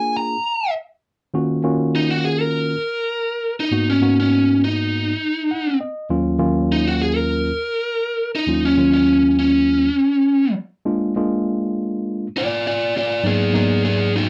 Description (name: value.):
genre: blues.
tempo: 101 BPM.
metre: 4/4.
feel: straight.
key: Eb minor.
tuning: A4 = 437 Hz.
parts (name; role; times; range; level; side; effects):
biting lead guitar; melody; 0.0-14.3 s; Cb4 to Bb5; -20 LUFS; equal; overdrive.
tine electric piano; accompaniment; 0.0-14.3 s; Eb2 to Gb5; -22 LUFS; equal; none.
room: light reverb.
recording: dry, close 1970s-style studio recording.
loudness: -19 LUFS.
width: mono.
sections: 0.0-1.3 A section; 1.3-14.3 B section.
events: lead electric guitar solo 0.0-1.3; tine electric piano fill 5.2-6.1.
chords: 0.0 Bb7; 1.3 Ebm7; 3.7 Abm7; 6.1 Ebm7; 10.9 Bb7; 13.2 Abm7.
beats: 0.14 0.74 | 1.33 1.93 2.52 3.12 | 3.71 4.31 4.91 5.50 | 6.10 6.69 7.29 7.88 | 8.48 9.07 9.67 10.26 | 10.86 11.45 12.05 12.64 | 13.23 13.83.